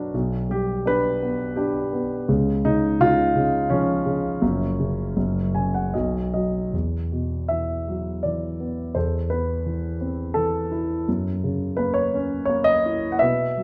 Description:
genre	classical, lyrical solo piano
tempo	84 BPM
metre	3/4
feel	rubato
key	unclear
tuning	A4 = 440 Hz
part	dark concert grand piano	solo	0.0-13.6 s	F#1 to G#5	-23 LUFS	equal	none
room	moderate recital hall reverb, RT60 1.6 s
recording	none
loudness	-23 LUFS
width	mono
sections	0.0-6.7 A section; 6.7-13.6 B section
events	grand piano fill 5.2-6.7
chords	0.1 G/B; 2.3 C#; 4.4 F#5; 5.9 B; 6.7 Esus2; 9.0 Amadd9/E; 11.1 F#7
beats	| 0.14 0.85 1.57 | 2.29 3.00 3.70 | 4.42 5.16 5.94 | 6.73 7.50 8.24 | 8.95 9.65 10.35 | 11.07 11.78 12.49 | 13.21

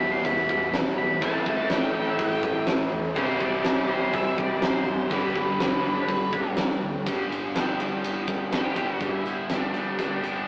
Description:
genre	rock, shoegaze and dream pop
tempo	123 BPM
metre	4/4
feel	straight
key	G major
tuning	A4 = 440 Hz
part	octave-fuzz lead guitar	melody	0.0-10.5 s	D4 to C6	-32 LUFS	equal	distortion
part	crunchy overdriven guitar	riff	0.0-7.1 s	E2 to C4	-34 LUFS	equal	none
part	overdriven semi-hollow guitar	riff	0.0-10.5 s	E2 to G4	-30 LUFS	equal	none
part	thick fuzz guitar	riff	0.0-10.5 s	E2 to C4	-39 LUFS	equal	none
part	vintage muted fingered electric bass	bass	0.0-10.4 s	E1 to G2	-46 LUFS	equal	none
part	huge arena drum kit	drums	0.2-10.3 s	hi-hat, kick drum, ride cymbal, snare drum	-30 LUFS	equal	none
room	wet studio reverb, RT60 0.6 s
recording	rough rehearsal-room recording, AM radio sound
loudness	-26 LUFS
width	mono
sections	0.0-7.1 A section; 7.1-9.0 B section; 9.0-10.5 C section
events	none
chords	0.0 Em; 1.2 Am7; 3.2 C; 5.1 G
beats	0.25 0.73 | 1.22 1.71 2.19 2.68 | 3.17 3.65 4.14 4.62 | 5.11 5.60 6.08 6.57 | 7.06 7.55 8.04 8.52 | 9.01 9.50 9.99

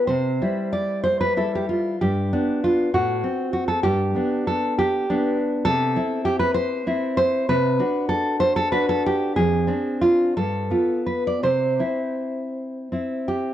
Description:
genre	romantic piece for solo classical guitar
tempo	53-68 BPM (dotted quarters)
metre	6/8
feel	rubato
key	C major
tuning	A4 = 440 Hz
part	nylon-string guitar	solo	0.0-13.5 s	F2 to D5	-20 LUFS	equal	none
room	light reverb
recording	worn, warbling old tape, cassette tape, warbly pitch drift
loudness	-20 LUFS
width	side -11 dB against mid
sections	0.0-13.5 A section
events	none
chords	0.1 C; 2.0 G; 2.9 F#dim/A; 3.8 G; 5.7 C; 7.5 D7/C; 9.4 Dm7b5/F; 10.4 G7; 11.5 C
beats	| 0.09 1.04 | 1.99 2.92 | 3.84 4.78 | 5.68 6.58 | 7.50 8.43 | 9.38 10.38 | 11.45 12.56

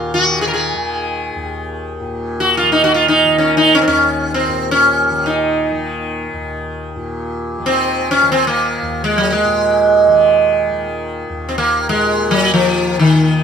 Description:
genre	indian classical, Hindustani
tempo	free time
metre	none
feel	none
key	Eb raga bhimpalasi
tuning	A4 = 441 Hz
part	sitar	melody	0.0-13.4 s	Eb3 to Bb4	-13 LUFS	right 1 dB	none
part	tanpura	drone	0.0-13.4 s	Eb2 to Eb3	-22 LUFS	left 2 dB	none
room	moderate studio reverb, RT60 0.5 s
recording	minimal, uncompressed stereo recording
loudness	-12 LUFS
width	side -7 dB against mid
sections	0.0-13.4 A section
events	none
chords	none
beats	free time

